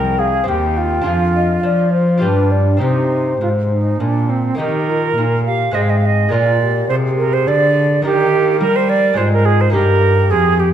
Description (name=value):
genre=classical, baroque-style sonata movement with continuo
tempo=104 BPM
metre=3/4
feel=straight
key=C minor, Eb major from 4.6 s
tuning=A4 = 439 Hz
part: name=mellow hollow baroque flute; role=melody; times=0.0-10.7 s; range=Eb4 to G5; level=-21 LUFS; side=left 6 dB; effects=none
part: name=silver concert flute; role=second line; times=0.0-10.7 s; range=C4 to F5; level=-17 LUFS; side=right 4 dB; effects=none
part: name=lute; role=accompaniment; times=0.0-10.7 s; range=Eb2 to Ab4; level=-23 LUFS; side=equal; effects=none
part: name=warm cello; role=bass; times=0.0-10.7 s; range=C2 to G3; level=-17 LUFS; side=equal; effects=none
room=moderate recital hall reverb, RT60 1.4 s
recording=dark, warm production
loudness=-13 LUFS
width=side -10 dB against mid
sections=0.0-4.6 A section; 4.6-10.7 A section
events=none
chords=0.5 Cm/Eb; 1.1 Ddim/F; 2.2 G7; 2.8 Cm; 4.6 Eb; 5.7 Ab; 6.3 Bb7; 8.0 Eb; 9.2 Ab; 9.7 Eb